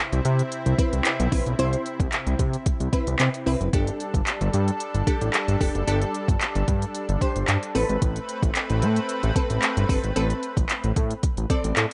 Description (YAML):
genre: dance-pop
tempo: 112 BPM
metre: 4/4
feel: straight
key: C major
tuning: A4 = 441 Hz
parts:
  - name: wavetable chord stab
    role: accompaniment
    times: 0.0-11.9 s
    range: C4 to D5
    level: -30 LUFS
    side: equal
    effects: sidechain pumping
  - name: lush unison pad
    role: sustained chords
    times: 0.0-11.9 s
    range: C3 to B4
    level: -34 LUFS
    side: equal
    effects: chorus, sidechain pumping
  - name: fat analog bass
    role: bass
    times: 0.1-11.9 s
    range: F1 to C3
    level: -26 LUFS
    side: equal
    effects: sidechain pumping
  - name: smooth R&B drum kit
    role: drums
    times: 0.1-11.9 s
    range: handclaps, hi-hat, kick drum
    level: -27 LUFS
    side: equal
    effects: none
room: digital ambience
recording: nothing above 10.5 kHz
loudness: -24 LUFS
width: mono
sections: 0.0-11.9 A section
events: none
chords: 0.0 Cmaj7; 3.7 Gsus2; 7.8 Amadd9